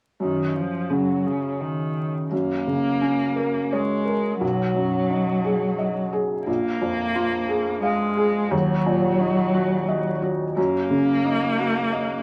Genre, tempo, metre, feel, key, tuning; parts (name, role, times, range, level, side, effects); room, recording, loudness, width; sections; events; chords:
neoclassical piano and strings; 88 BPM; 3/4; rubato; F# major; A4 = 441 Hz
rich cello; second line; 0.2-12.2 s; C#3 to A#3; -27 LUFS; equal
felt-muted upright piano; accompaniment; 0.2-12.2 s; A#1 to E#5; -25 LUFS; equal
moderate studio reverb, RT60 0.6 s; vinyl crackle; -23 LUFS; mono
0.2-2.3 A section; 2.3-12.2 B section
0.2 F#5; 2.3 F#; 4.4 B6; 6.5 A#5; 8.5 D#m; 10.6 F#6